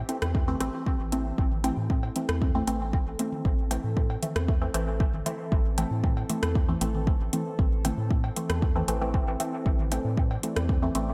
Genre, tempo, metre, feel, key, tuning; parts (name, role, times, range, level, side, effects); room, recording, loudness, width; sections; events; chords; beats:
dub techno; 116 BPM; 4/4; straight; A minor; A4 = 441 Hz
warbly tape-like pad; sustained chords; 0.0-11.1 s; E3 to D5; -39 LUFS; equal; chorus, built-in reverb, phaser, sidechain pumping
round analog bass; bass; 0.0-11.1 s; A1 to A2; -32 LUFS; equal; sidechain pumping
filtered dub chord stab; stabs; 0.1-11.1 s; E3 to C4; -34 LUFS; equal; phaser, sidechain pumping, dub echo
deep house drum kit; drums; 0.1-11.1 s; hi-hat, rim click; -35 LUFS; equal; overdrive
electronic kick drum; drums; 0.3-10.8 s; -28 LUFS; equal; overdrive
electronic toms and cowbell; percussion; 0.5-10.8 s; -43 LUFS; equal; sidechain pumping on toms, sidechain pumping on perc, dub echo
light reverb; -27 LUFS; mono
0.0-1.4 A section; 1.4-11.1 A section
0.0 Am
0.35 0.86 | 1.38 1.90 2.42 2.93 | 3.45 3.97 4.49 5.00 | 5.52 6.04 6.55 7.07 | 7.59 8.11 8.62 9.14 | 9.66 10.18 10.69